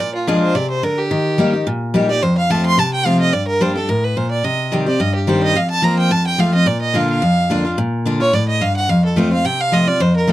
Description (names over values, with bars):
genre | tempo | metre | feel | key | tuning
bluegrass | 216 BPM | 4/4 | swing 54% on 8ths | Bb major | A4 = 440 Hz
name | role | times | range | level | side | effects
clear fiddle | melody | 0.0-10.3 s | F4 to C6 | -19 LUFS | right 2 dB | none
picked steel-string acoustic guitar | accompaniment | 0.0-10.3 s | F2 to G4 | -16 LUFS | left 1 dB | none
room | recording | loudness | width
light reverb | dry, close 1970s-style studio recording | -14 LUFS | side -14 dB against mid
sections
0.0-7.8 A section; 7.8-10.3 B section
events
fiddle solo 7.8-10.3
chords
0.0 Bb7; 1.1 Eb; 2.2 F; 3.3 Gm; 4.4 Cm; 5.6 Fsus4; 6.1 F; 6.7 Bb; 8.9 F